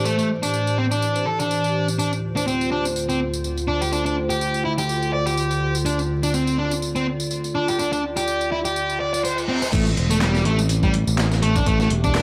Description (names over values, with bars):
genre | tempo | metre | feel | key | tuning
breakbeat, breaks | 124 BPM | 4/4 | swing 55% on 16ths | A minor | A4 = 437 Hz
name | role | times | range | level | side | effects
warbly tape-like pad | sustained chords | 0.0-12.2 s | D2 to D5 | -27 LUFS | equal | chorus, built-in reverb, phaser, sidechain pumping
sludgy distorted guitar | riff | 0.0-12.2 s | G3 to D5 | -25 LUFS | equal | overdrive, tape echo
electronic tambourine and handclaps | drums | 0.1-12.2 s | none | -33 LUFS | equal | none
reverse cymbal | sound effects | 9.1-9.7 s | none | -34 LUFS | equal | none
overdriven fingered electric bass | bass | 9.7-12.2 s | E1 to A1 | -22 LUFS | equal | none
breakbeat sampler-style drum kit | drums | 9.7-12.2 s | crash cymbal, hi-hat, kick drum, snare drum | -26 LUFS | equal | none
room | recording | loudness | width
light reverb | vinyl crackle | -22 LUFS | mono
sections
0.0-9.7 A section; 9.7-12.2 B section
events
reverse cymbal 9.1-9.7; drop 9.7-12.2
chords
0.0 Am7; 2.0 Dm7; 9.7 Am7